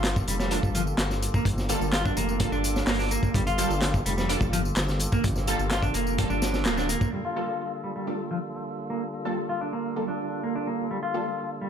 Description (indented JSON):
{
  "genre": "breakbeat, breaks",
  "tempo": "127 BPM",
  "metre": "4/4",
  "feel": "straight",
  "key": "G minor",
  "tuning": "A4 = 440 Hz",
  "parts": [
    { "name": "tonewheel organ", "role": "sustained chords", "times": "0.0-11.7 s", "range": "D3 to A4", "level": "-35 LUFS", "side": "equal", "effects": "slow rotary speaker, sidechain pumping" },
    { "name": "clean electric guitar", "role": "riff", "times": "0.0-11.7 s", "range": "F3 to F4", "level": "-30 LUFS", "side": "right 1 dB", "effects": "tube saturation, low-pass filter, tape echo" },
    { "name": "dark detuned saw bass", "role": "bass", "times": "0.0-7.0 s", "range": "D1 to G1", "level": "-29 LUFS", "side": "equal", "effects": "tube saturation" },
    { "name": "crunchy breakbeat drum kit", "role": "drums", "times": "0.0-7.1 s", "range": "hi-hat, kick drum, snare drum", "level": "-27 LUFS", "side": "equal", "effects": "none" },
    { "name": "electronic handclaps and tambourine", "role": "drums", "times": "0.0-7.1 s", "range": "none", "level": "-34 LUFS", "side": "left 1 dB", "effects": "overdrive" },
    { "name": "orchestra-hit-like synth stab", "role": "stabs", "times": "0.5-11.3 s", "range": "G3 to A4", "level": "-33 LUFS", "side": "right 1 dB", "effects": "built-in reverb, phaser, tape echo" }
  ],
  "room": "studio reverb",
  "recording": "none",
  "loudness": "-24 LUFS",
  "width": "side -8 dB against mid",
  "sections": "0.0-7.1 A section; 7.1-11.7 B section",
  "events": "band accent 6.7",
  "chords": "0.0 Gm9",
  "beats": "0.04 0.51 0.99 | 1.46 1.93 2.40 2.88 | 3.35 3.82 4.29 4.77 | 5.24 5.71 6.18 6.66 | 7.13 7.60 8.07 8.55 | 9.02 9.49 9.96 10.44 | 10.91 11.38"
}